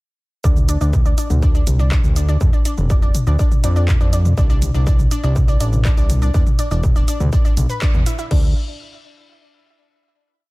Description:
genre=melodic techno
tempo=122 BPM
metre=4/4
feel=straight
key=unclear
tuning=A4 = 441 Hz
part: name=analog pluck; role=arpeggios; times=0.4-8.5 s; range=D4 to B5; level=-27 LUFS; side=left 2 dB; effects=chorus, sidechain pumping, digital delay
part: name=fat analog bass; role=bass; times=0.4-8.5 s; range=E1 to F2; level=-17 LUFS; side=equal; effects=sidechain pumping
part: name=electronic kick drum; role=drums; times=0.4-8.4 s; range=none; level=-16 LUFS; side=equal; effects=distortion
part: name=punchy analog drum machine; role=drums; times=0.4-8.4 s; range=crash cymbal, handclaps, hi-hat, shaker, toms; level=-25 LUFS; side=left 1 dB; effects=sidechain pumping on perc, sidechain pumping on toms, sidechain pumping on hats, sidechain pumping on cymbals
room=digital ambience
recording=none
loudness=-14 LUFS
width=side -22 dB against mid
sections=0.4-8.3 drop; 8.3-10.3 final chord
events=drop 0.4-8.3; band accent 7.8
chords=0.4 Csus2; 2.4 Dm/F; 4.4 Amadd11; 6.3 E5; 8.3 N.C.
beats=| 0.44 0.93 1.42 1.92 | 2.41 2.90 3.39 3.88 | 4.38 4.87 5.36 5.85 | 6.34 6.83 7.33 7.82 | 8.31

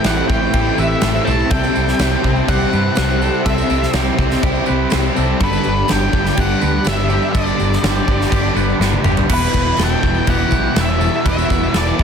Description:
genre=rock, shoegaze and dream pop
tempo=123 BPM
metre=4/4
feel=straight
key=unclear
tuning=A4 = 440 Hz
part: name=octave-fuzz lead guitar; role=melody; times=0.0-12.0 s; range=B4 to A5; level=-23 LUFS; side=left 2 dB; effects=distortion, tape echo
part: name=ensemble organ-string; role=sustained chords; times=0.0-9.3 s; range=C4 to B5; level=-26 LUFS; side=right 1 dB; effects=ensemble chorus
part: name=twangy electric guitar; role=arpeggios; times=0.0-12.0 s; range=G4 to B4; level=-27 LUFS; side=left 2 dB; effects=wide subtle chorus, tape echo
part: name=biting overdriven guitar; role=riff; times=0.0-12.0 s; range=G2 to E4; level=-23 LUFS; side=right 13 dB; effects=reverse reverb
part: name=overdriven electric guitar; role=riff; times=0.0-12.0 s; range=E2 to C4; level=-22 LUFS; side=equal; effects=none
part: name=thick fuzz guitar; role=riff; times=0.0-12.0 s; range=E2 to C4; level=-23 LUFS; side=left 9 dB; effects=distortion, ensemble chorus
part: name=vintage muted fingered electric bass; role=bass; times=0.0-12.0 s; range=E1 to G2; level=-20 LUFS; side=equal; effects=none
part: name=gated 80s drum kit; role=drums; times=0.0-12.0 s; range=crash cymbal, kick drum, snare drum, toms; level=-20 LUFS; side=equal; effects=none
part: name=tambourine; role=percussion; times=0.0-11.9 s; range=none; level=-37 LUFS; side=right 16 dB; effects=none
room=light reverb, small room reverb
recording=dense, heavily limited modern master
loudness=-14 LUFS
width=side -7 dB against mid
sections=0.0-9.3 A section; 9.3-12.0 B section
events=drum fill 8.8-9.3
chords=0.0 Am7; 1.5 C6; 5.4 G; 9.3 Em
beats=0.05 0.53 1.02 | 1.50 1.99 2.48 2.96 | 3.45 3.94 4.42 4.91 | 5.40 5.88 6.37 6.86 | 7.35 7.83 8.32 8.81 | 9.30 9.79 10.28 10.77 | 11.26 11.75

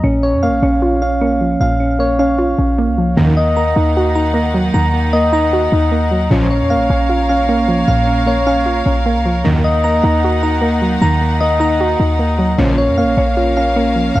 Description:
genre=hip hop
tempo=153 BPM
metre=4/4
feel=half-time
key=Eb minor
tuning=A4 = 440 Hz
part: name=soft round pluck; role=accompaniment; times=0.0-14.2 s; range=Bb2 to Gb4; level=-18 LUFS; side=right 1 dB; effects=chorus
part: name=soft electric-piano-like synth keys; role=arpeggios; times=0.0-14.2 s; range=Bb3 to Bb5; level=-16 LUFS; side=equal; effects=chorus, analog delay
part: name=clean 808-style bass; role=bass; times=0.0-14.2 s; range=Bb1 to F2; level=-18 LUFS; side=equal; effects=none
part: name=clear studio string section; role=sustained chords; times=3.2-14.2 s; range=Eb3 to Gb5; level=-23 LUFS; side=equal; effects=none
part: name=big bright polysynth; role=stabs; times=3.2-3.3, 6.3-6.5, 9.4-9.6, 12.6-12.8 s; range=Bb1 to F3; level=-19 LUFS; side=equal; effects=none
room=light reverb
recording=dry, gritty hardware recording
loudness=-12 LUFS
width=side -16 dB against mid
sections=0.0-3.2 A section; 3.2-14.2 B section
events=none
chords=0.0 Bbm; 3.2 Ebm; 6.3 Bbm; 9.4 Ebm; 12.6 Bbm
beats=| 0.04 0.43 0.82 1.21 | 1.60 2.00 2.39 2.78 | 3.17 3.57 3.96 4.35 | 4.74 5.13 5.53 5.92 | 6.31 6.70 7.09 7.49 | 7.88 8.27 8.66 9.06 | 9.45 9.84 10.23 10.62 | 11.02 11.41 11.80 12.19 | 12.59 12.98 13.37 13.76 | 14.15

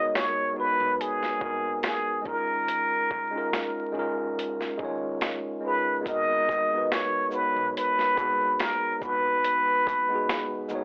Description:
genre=lo-fi hip hop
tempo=71 BPM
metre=4/4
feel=swing 56% on 16ths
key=G# dorian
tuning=A4 = 440 Hz
part: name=trumpet with plunger mute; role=melody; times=0.0-10.7 s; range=G#4 to D#5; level=-24 LUFS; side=equal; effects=none
part: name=tine electric piano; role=accompaniment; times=0.0-10.8 s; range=G#3 to C#5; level=-31 LUFS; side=equal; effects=medium stereo tremolo
part: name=upright bass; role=bass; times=0.0-10.8 s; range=F#1 to D#2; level=-49 LUFS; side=equal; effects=transformer saturation
part: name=boom bap sampler-style drum kit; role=drums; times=0.2-10.8 s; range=finger snaps, hi-hat, kick drum, shaker, snare drum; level=-30 LUFS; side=equal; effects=none
room=moderate studio reverb, RT60 0.6 s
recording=dry, gritty hardware recording, vinyl crackle, telephone sound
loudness=-24 LUFS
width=side -31 dB against mid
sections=0.0-10.8 A section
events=none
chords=0.0 G#m7; 2.3 D#9sus4; 6.1 G#m7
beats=0.14 0.99 1.83 | 2.68 3.52 4.37 5.21 | 6.06 6.90 7.75 8.59 | 9.44 10.28

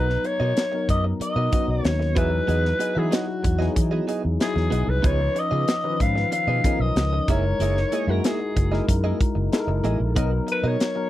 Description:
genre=polished 1980s jazz-funk pop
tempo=94 BPM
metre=4/4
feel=straight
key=B major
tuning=A4 = 440 Hz
part: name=growling alto saxophone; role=melody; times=0.0-11.1 s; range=F#4 to E#5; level=-26 LUFS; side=left 1 dB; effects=slapback echo
part: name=tine electric piano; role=accompaniment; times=0.0-11.1 s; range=D#3 to A#5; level=-28 LUFS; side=left 4 dB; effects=analog chorus
part: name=direct-recorded clean electric guitar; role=riff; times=0.0-11.0 s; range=A#3 to E5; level=-29 LUFS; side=right 6 dB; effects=lush chorus
part: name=fretless electric bass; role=bass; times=0.0-10.8 s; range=F#1 to E3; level=-23 LUFS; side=equal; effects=none
part: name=tight funk drum kit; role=drums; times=0.1-11.0 s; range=hi-hat, kick drum, snare drum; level=-24 LUFS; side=equal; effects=none
room=light reverb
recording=dry, close 1970s-style studio recording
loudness=-20 LUFS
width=side -14 dB against mid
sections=0.0-11.1 A section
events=none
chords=0.0 Bmaj7; 2.2 Emaj9; 5.0 C#9; 7.3 F#13; 10.2 Bmaj7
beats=0.57 1.21 1.85 | 2.49 3.13 3.77 4.41 | 5.05 5.68 6.33 6.96 | 7.60 8.24 8.88 9.52 | 10.16 10.80

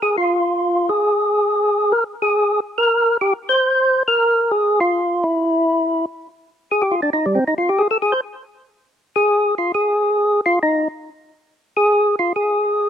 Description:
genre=jazz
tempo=138 BPM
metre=4/4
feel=swing 65% on 8ths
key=unclear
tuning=A4 = 440 Hz
part: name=percussive tonewheel organ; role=solo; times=0.0-12.9 s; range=G3 to C5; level=-16 LUFS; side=equal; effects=slow rotary speaker, overdrive
room=little or no reverb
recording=recorded outdoors, with no room sound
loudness=-16 LUFS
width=side -9 dB against mid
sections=0.0-6.2 A section; 6.2-12.9 B section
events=tonewheel organ solo 6.2-12.9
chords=none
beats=0.15 0.58 | 1.02 1.45 1.89 2.32 | 2.76 3.19 3.63 4.06 | 4.50 4.93 5.37 5.80 | 6.24 6.67 7.11 7.54 | 7.97 8.41 8.84 9.28 | 9.71 10.15 10.58 11.02 | 11.45 11.89 12.32 12.76

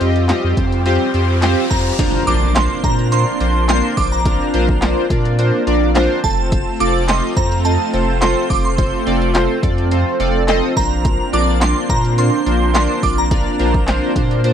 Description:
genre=dance-pop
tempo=106 BPM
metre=4/4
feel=straight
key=Bb major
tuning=A4 = 442 Hz
part: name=chorused polysynth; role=accompaniment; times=0.0-14.5 s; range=C4 to Eb5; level=-19 LUFS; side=equal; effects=sidechain pumping
part: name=filtered supersaw swell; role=sustained chords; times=0.0-14.5 s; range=G3 to G4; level=-23 LUFS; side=equal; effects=phaser, sidechain pumping
part: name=saturated sub bass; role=bass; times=0.0-14.5 s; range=F1 to Bb2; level=-18 LUFS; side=equal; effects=sidechain pumping
part: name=punchy analog drum machine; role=drums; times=0.0-14.5 s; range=crash cymbal, handclaps, hi-hat, kick drum, snare drum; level=-19 LUFS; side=equal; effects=none
part: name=riser and impact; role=sound effects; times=0.5-4.3 s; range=none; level=-27 LUFS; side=equal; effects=none
part: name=shimmering bell with halo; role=melody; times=1.7-14.0 s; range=A5 to D6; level=-22 LUFS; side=right 3 dB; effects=ensemble chorus, slapback echo
room=little or no reverb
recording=dry, close 1970s-style studio recording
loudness=-14 LUFS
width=side -8 dB against mid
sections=0.0-2.0 A section; 2.0-14.5 B section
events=riser 0.5-2.0; impact 2.0-4.3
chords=0.0 Fsus2; 2.0 Bbadd9; 6.2 F; 10.8 Bbadd9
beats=0.29 0.86 1.42 | 1.99 2.56 3.12 3.69 | 4.25 4.82 5.39 5.95 | 6.52 7.08 7.65 8.22 | 8.78 9.35 9.91 10.48 | 11.05 11.61 12.18 12.74 | 13.31 13.88 14.44

